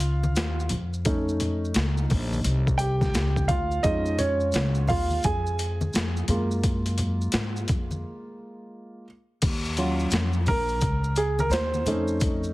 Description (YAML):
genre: hip hop, jazz-hop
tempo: 86 BPM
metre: 4/4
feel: swing 65% on 16ths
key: unclear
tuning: A4 = 440 Hz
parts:
  - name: dark concert grand piano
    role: accompaniment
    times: 0.0-12.5 s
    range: F#3 to G#5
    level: -28 LUFS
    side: right 1 dB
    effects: none
  - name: upright bass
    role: bass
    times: 0.0-12.5 s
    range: A#1 to G#2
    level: -26 LUFS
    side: equal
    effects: none
  - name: boom bap sampler-style drum kit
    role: drums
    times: 0.0-12.4 s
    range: crash cymbal, hi-hat, kick drum, snare drum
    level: -27 LUFS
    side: equal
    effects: overdrive
  - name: maracas and congas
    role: percussion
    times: 0.0-12.5 s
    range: none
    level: -35 LUFS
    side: left 1 dB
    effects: none
room: small room ambience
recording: heavily compressed radio sound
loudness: -23 LUFS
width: side -19 dB against mid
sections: 0.0-9.4 A section; 9.4-12.5 B section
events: grand piano solo 0.0-9.4, 9.4-12.5; break 8.0-9.4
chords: 0.0 D#7sus2; 0.7 F7b13; 3.8 C#add9; 6.3 F#maj9; 9.4 D#m9; 11.9 F7b13